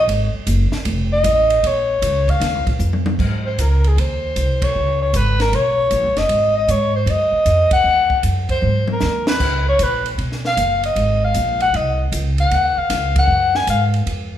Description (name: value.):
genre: jazz, small-group swing and bop.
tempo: 154 BPM.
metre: 4/4.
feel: swing 66% on 8ths.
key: Ab mixolydian.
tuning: A4 = 440 Hz.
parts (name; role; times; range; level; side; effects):
breathy soprano saxophone; melody; 0.0-13.9 s; Ab4 to Ab5; -17 LUFS; left 1 dB; none.
upright bass; bass; 0.0-14.4 s; F1 to Ab2; -19 LUFS; equal; none.
compact cocktail drum kit; drums; 0.1-14.2 s; crash cymbal, hi-hat, kick drum, ride cymbal, snare drum, toms; -25 LUFS; equal; none.
room: moderate large studio reverb, RT60 1.2 s.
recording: band playing live in one room.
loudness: -15 LUFS.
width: side -11 dB against mid.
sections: 0.0-3.2 A section; 3.2-14.4 B section.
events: soprano saxophone solo 0.0-3.2; drum fill 2.8-3.2, 8.6-9.4; band accent 4.6, 7.7, 13.1.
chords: 0.1 Gbsus2; 0.9 F7; 1.6 Bbm; 2.4 Ebsus2; 3.2 Ab; 4.7 Db7(no3); 6.3 Ab5; 7.9 Ebm; 8.6 Ab5; 9.4 Db7; 11.0 Ab7.